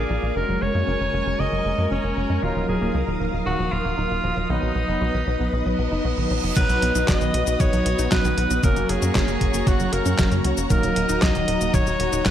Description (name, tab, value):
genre	italo disco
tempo	116 BPM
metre	4/4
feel	straight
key	unclear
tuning	A4 = 440 Hz
part	bright alto saxophone	melody	0.0-12.3 s	Db4 to Eb5	-26 LUFS	equal	digital delay
part	string machine, full ensemble	sustained chords	0.0-12.3 s	F#4 to Eb6	-28 LUFS	left 1 dB	ensemble chorus
part	analog pluck	arpeggios	0.0-12.3 s	Db3 to F#4	-30 LUFS	right 3 dB	chorus, digital delay
part	analog synth brass	stabs	0.0-12.3 s	Gb3 to Bb5	-28 LUFS	equal	chorus
part	tight sequencer bass	bass	0.0-12.3 s	Eb1 to Gb2	-25 LUFS	equal	tube saturation
part	reverse cymbal	sound effects	5.7-6.6 s	none	-33 LUFS	right 6 dB	none
part	detuned 8-bit digital drum machine	drums	6.6-12.3 s	cabasa, crash cymbal, handclaps, hi-hat, snare drum	-27 LUFS	left 1 dB	none
part	electronic kick drum	drums	6.6-12.3 s	none	-22 LUFS	equal	none
room	moderate plate reverb, RT60 2.1 s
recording	bright 1980s-style digital production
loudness	-19 LUFS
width	side -10 dB against mid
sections	0.0-6.6 A section; 6.6-12.3 B section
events	filter sweep on synth arpeggio sound 0.0-6.6; reverse cymbal 5.7-6.6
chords	0.4 Gbadd9; 2.4 Ebmadd9; 4.5 B; 8.6 Gb; 10.7 Ebm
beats	| 0.36 0.88 1.39 1.91 | 2.43 2.94 3.46 3.98 | 4.50 5.01 5.53 6.05 | 6.57 7.08 7.60 8.12 | 8.63 9.15 9.67 10.19 | 10.70 11.22 11.74 12.26